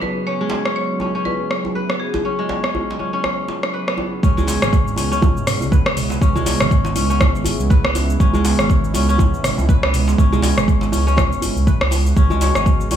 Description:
afro house; 121 BPM; 4/4; swing 57% on 16ths; C# minor; A4 = 440 Hz
marimba with hard mallets; melody; 0.0-3.0 s; G#4 to C#5; -28 LUFS; left 1 dB; dub echo
warm analog pad; sustained chords; 0.0-13.0 s; C#3 to G#4; -25 LUFS; right 1 dB; chorus, sidechain pumping
kora; arpeggios; 0.0-13.0 s; G#3 to C#5; -23 LUFS; left 1 dB; sidechain pumping, dub echo
djembe; percussion; 0.0-13.0 s; -26 LUFS; right 2 dB
afro-pop drum kit; drums; 0.7-13.0 s; cabasa, hi-hat, rim click, toms; -22 LUFS; equal
smooth gliding synth bass; bass; 4.2-13.0 s; G#1 to C#2; -20 LUFS; equal; tube saturation, sidechain pumping
electronic kick drum; drums; 4.2-12.8 s; -16 LUFS; equal
light reverb; small room ambience; -15 LUFS; side -9 dB against mid
0.0-4.2 A section; 4.2-13.0 B section
drop 4.2-13.0
0.0 Eadd9/C#; 4.2 C#m7; 12.2 Eadd9

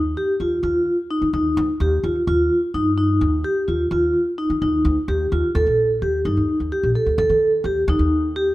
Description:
contemporary instrumental, chamber music in an uneven meter; 256 BPM (eighths); 7/8; straight; Eb lydian; A4 = 439 Hz
upright bass; bass; 0.0-8.5 s; Bb1 to Eb3; -23 LUFS; equal
vibraphone with medium mallets; arpeggios; 0.2-8.5 s; Eb4 to A4; -19 LUFS; equal
light reverb; close, detailed microphones; -17 LUFS; side -17 dB against mid
0.0-5.6 A section; 5.6-8.5 B section
0.0 Eb

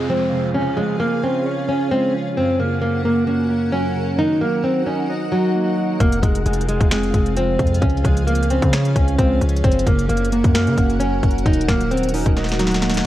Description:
hip hop, trap; 132 BPM; 4/4; half-time; A4 = 440 Hz
nylon-string guitar; melody; 0.0-13.1 s; Gb3 to Eb4; -20 LUFS; equal
muted felt-like synth keys; accompaniment; 0.0-13.1 s; F2 to Eb5; -23 LUFS; right 2 dB; chorus
granular cloud pad; sustained chords; 0.0-13.1 s; C4 to Gb5; -28 LUFS; equal; built-in reverb
downlifter; sound effects; 0.0-2.4 s; -38 LUFS; right 1 dB
distorted 808-style bass; bass; 6.0-13.0 s; Eb1 to Db3; -21 LUFS; equal; distortion
trap drum kit; drums; 6.0-13.1 s; finger snaps, hi-hat, kick drum, snare drum; -19 LUFS; equal
light reverb; worn, warbling old tape, cassette tape, warbly pitch drift; -16 LUFS; side -13 dB against mid
0.0-13.1 A section
drum fill 12.4-13.1
0.0 Fm; 0.5 Db; 2.4 Gb; 4.2 Ebm; 6.0 Fm; 7.8 Db; 9.6 Gb; 11.5 Ebm

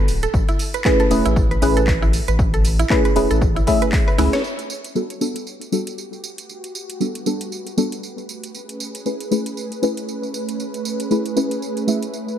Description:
deep house; 117 BPM; 4/4; swing 58% on 16ths; G major; A4 = 439 Hz
mallet-like synth pluck; arpeggios; 0.0-4.4 s; E4 to C#5; -26 LUFS; right 4 dB; chorus, sidechain pumping, tape echo
round analog bass; bass; 0.0-4.3 s; D1 to C#2; -20 LUFS; equal; sidechain pumping
house drum kit; drums; 0.1-12.4 s; handclaps, hi-hat, snare drum, tambourine; -30 LUFS; right 1 dB; overdrive
electronic kick drum; drums; 0.3-4.0 s; -20 LUFS; equal; overdrive
deep mellow chord stab; stabs; 0.8-12.4 s; G3 to E5; -21 LUFS; equal; chorus, cassette tape, tape echo
warm analog pad; sustained chords; 4.4-12.4 s; A3 to B4; -28 LUFS; right 2 dB; chorus, sidechain pumping
light reverb, digital ambience; -17 LUFS; side -10 dB against mid
0.0-4.4 A section; 4.4-12.4 B section
filter sweep on synth stab 0.0-4.4, 4.4-12.4; drum fill 4.2; band accent 4.3
0.3 Amaj9; 4.4 Gmaj9; 8.5 Amaj9

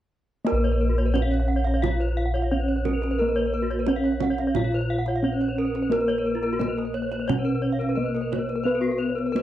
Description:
Balinese gamelan; 88 BPM; 4/4; straight; Bb pelog; A4 = 440 Hz
gamelan-type bronze metallophone; melody; 0.4-9.4 s; Bb3 to F4-30c; -26 LUFS; equal
gamelan-type bronze metallophone; arpeggios; 0.5-9.4 s; Gb4-20c to F5-30c; -31 LUFS; left 5 dB
gamelan-type bronze metallophone; arpeggios; 0.5-9.3 s; F4-30c to Gb5-20c; -32 LUFS; right 5 dB
gamelan-type bossed gongs; bass; 0.5-9.4 s; Bb1 to Cb5+20c; -26 LUFS; equal
kendang; percussion; 0.5-9.4 s; -33 LUFS; right 10 dB
little or no reverb; dry, close 1970s-style studio recording; -22 LUFS; side -12 dB against mid
0.5-9.4 A section

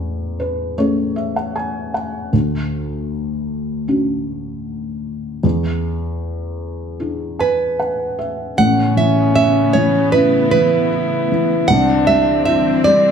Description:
acoustic folk-pop ballad; 77 BPM; 4/4; straight; A major; A4 = 444 Hz
felt-muted upright piano; accompaniment; 0.0-13.1 s; A1 to G#5; -19 LUFS; left 1 dB
nylon-string guitar; melody; 7.4-13.1 s; B4 to F#5; -16 LUFS; right 4 dB
clear French horn; second line; 8.6-13.0 s; C#4 to E4; -19 LUFS; left 3 dB
warm studio string section; sustained chords; 8.6-13.1 s; C#3 to C4; -23 LUFS; left 1 dB
moderate large studio reverb, RT60 1.0 s; heard from further back in the room; -15 LUFS; side -7 dB against mid
0.0-8.6 A section; 8.6-13.1 B section
0.0 Amaj7; 2.3 Dmaj7; 5.4 E7; 8.6 Aadd9; 11.7 Cadd9

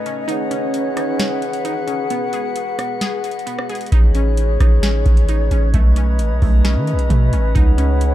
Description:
hip hop, atmospheric cloud-rap; 132 BPM; 4/4; half-time; A lydian; A4 = 439 Hz
breathy mellow large flute ensemble; sustained chords; 0.0-8.1 s; C#4 to F#5; -23 LUFS; left 3 dB; sidechain pumping
glassy wavetable pluck; arpeggios; 0.0-8.1 s; A3 to G#4; -26 LUFS; right 2 dB; chorus, ping-pong delay
drifting glass-harmonics texture; texture; 0.0-8.1 s; E3 to C#5; -33 LUFS; right 1 dB; chorus, built-in reverb
booming analog drum machine; drums; 0.1-8.1 s; hi-hat, kick drum, rim click, snare drum; -16 LUFS; equal
long sustained 808-style bass; bass; 3.9-8.1 s; A1 to D#3; -16 LUFS; equal
little or no reverb; dark, warm production; -15 LUFS; side -13 dB against mid
0.0-8.1 A section
break 0.0-3.9
0.3 C#m11; 2.1 G#m7; 3.9 Amaj9#11; 7.6 C#m11

